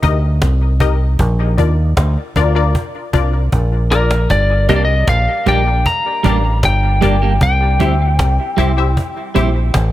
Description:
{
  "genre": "dub reggae",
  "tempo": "77 BPM",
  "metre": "4/4",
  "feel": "straight",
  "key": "G minor",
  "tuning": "A4 = 440 Hz",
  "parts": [
    { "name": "filtered dub chord stab", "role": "stabs", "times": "0.0-9.6 s", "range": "D4 to E5", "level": "-22 LUFS", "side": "left 6 dB", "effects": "chorus, dub echo" },
    { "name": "deep dub fingered electric bass", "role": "bass", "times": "0.0-9.9 s", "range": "G1 to Eb2", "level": "-14 LUFS", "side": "equal", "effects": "none" },
    { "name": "cajon", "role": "drums", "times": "0.0-9.9 s", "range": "none", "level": "-19 LUFS", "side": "equal", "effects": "none" },
    { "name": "lightly driven lead guitar", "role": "melody", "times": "3.9-9.9 s", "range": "Bb4 to Bb5", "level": "-18 LUFS", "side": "left 2 dB", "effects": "dub echo" },
    { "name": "clean electric guitar", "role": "accompaniment", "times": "4.7-9.6 s", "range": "G3 to G4", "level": "-21 LUFS", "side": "right 7 dB", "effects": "spring reverb, dub echo" }
  ],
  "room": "little or no reverb",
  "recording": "none",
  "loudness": "-12 LUFS",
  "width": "side -14 dB against mid",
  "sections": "0.0-9.9 A section",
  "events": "break 0.0-4.3; drum fill 3.5-4.3",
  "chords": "0.0 Eb; 1.2 Bb; 4.3 Gm; 7.4 C",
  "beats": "0.42 | 1.19 1.97 2.75 3.53 | 4.30 5.08 5.86 6.64 | 7.42 8.19 8.97 9.75"
}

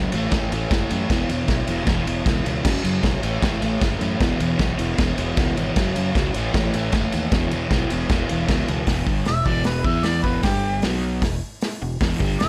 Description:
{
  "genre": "garage rock duo or trio",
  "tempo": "154 BPM",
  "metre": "4/4",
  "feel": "straight",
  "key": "unclear",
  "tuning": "A4 = 444 Hz",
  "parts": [
    { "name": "crunchy overdriven guitar", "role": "riff", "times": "0.0-12.5 s", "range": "E2 to E4", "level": "-26 LUFS", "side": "equal", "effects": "none" },
    { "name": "modern bright fingered electric bass", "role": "bass", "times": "0.0-12.5 s", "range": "E1 to F#2", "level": "-30 LUFS", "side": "equal", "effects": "tube saturation" },
    { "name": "vintage drum kit", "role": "drums", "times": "0.1-12.5 s", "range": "crash cymbal, hi-hat, kick drum, ride cymbal, snare drum", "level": "-25 LUFS", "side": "equal", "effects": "none" },
    { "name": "warm harmonica", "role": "melody", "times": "9.3-12.5 s", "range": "G4 to E5", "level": "-27 LUFS", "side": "equal", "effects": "overdrive" }
  ],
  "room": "little or no reverb",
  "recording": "none",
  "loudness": "-22 LUFS",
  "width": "mono",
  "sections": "0.0-8.9 A section; 8.9-12.5 B section",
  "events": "none",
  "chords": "0.1 A5; 1.1 E5; 2.7 F#5; 3.2 A5; 4.2 E5; 5.8 F#5; 6.4 A5; 7.3 E5; 10.4 G5; 10.8 B5; 11.2 E5",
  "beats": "0.32 0.71 | 1.10 1.49 1.88 2.27 | 2.66 3.05 3.44 3.83 | 4.22 4.61 5.00 5.38 | 5.77 6.16 6.55 6.94 | 7.33 7.72 8.11 8.49 | 8.88 9.27 9.66 10.05 | 10.44 10.83 11.22 11.62 | 12.01 12.40"
}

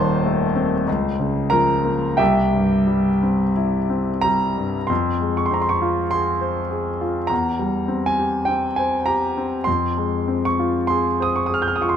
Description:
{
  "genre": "classical, romantic nocturne for solo piano",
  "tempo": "43-52 BPM",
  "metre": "4/4",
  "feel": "rubato",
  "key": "F minor",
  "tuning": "A4 = 440 Hz",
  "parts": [
    { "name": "warm concert grand piano", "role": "solo", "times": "0.0-12.0 s", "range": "Eb1 to G6", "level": "-18 LUFS", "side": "equal", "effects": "none" }
  ],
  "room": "moderate recital hall reverb, RT60 1.7 s",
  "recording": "close, detailed microphones",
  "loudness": "-18 LUFS",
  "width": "side -8 dB against mid",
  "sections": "0.0-4.9 A section; 4.9-12.0 B section",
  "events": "none",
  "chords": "0.0 Adim/Eb; 0.9 Bbm/Db; 2.2 C; 4.9 Fm; 7.3 C/E; 9.7 Fm",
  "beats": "0.87 2.19 3.56 | 4.90 6.13 7.30 8.48 | 9.67 10.88"
}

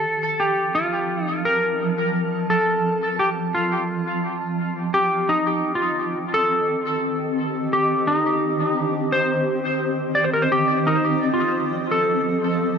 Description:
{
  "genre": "ambient",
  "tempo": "86 BPM",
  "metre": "4/4",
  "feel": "straight",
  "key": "F mixolydian",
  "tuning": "A4 = 439 Hz",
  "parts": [
    { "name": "clean lap steel guitar", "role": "melody", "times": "0.0-12.8 s", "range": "Eb4 to D5", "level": "-20 LUFS", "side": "equal", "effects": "dub echo" },
    { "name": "granular cloud pad", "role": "sustained chords", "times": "0.0-12.8 s", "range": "Eb3 to A5", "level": "-24 LUFS", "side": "right 1 dB", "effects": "built-in reverb" }
  ],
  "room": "wet spring reverb, RT60 1.3 s, digital ambience",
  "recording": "none",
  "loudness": "-19 LUFS",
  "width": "side -6 dB against mid",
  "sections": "0.0-12.8 A section",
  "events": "none",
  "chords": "0.0 F7; 5.3 Eb6; 10.9 F7",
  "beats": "0.40 1.09 1.79 | 2.49 3.19 3.89 4.58 | 5.28 5.98 6.68 7.37 | 8.07 8.77 9.47 10.16 | 10.86 11.56 12.26"
}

